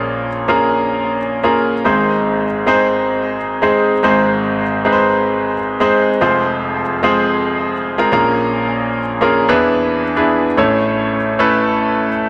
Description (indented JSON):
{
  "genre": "pop",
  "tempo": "110 BPM",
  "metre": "4/4",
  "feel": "straight",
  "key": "unclear",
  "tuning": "A4 = 441 Hz",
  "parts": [
    { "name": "clear grand piano", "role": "solo", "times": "0.0-12.3 s", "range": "F1 to C#5", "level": "-16 LUFS", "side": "equal", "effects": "digital delay" }
  ],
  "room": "moderate lush hall reverb, RT60 2.7 s",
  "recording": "none",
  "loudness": "-15 LUFS",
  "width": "mono",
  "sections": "0.0-10.6 A section; 10.6-12.3 A section",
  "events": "none",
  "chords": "0.0 Bbm7; 1.9 Ab; 6.2 Fm; 8.1 Bbm7; 9.5 E7; 10.6 A"
}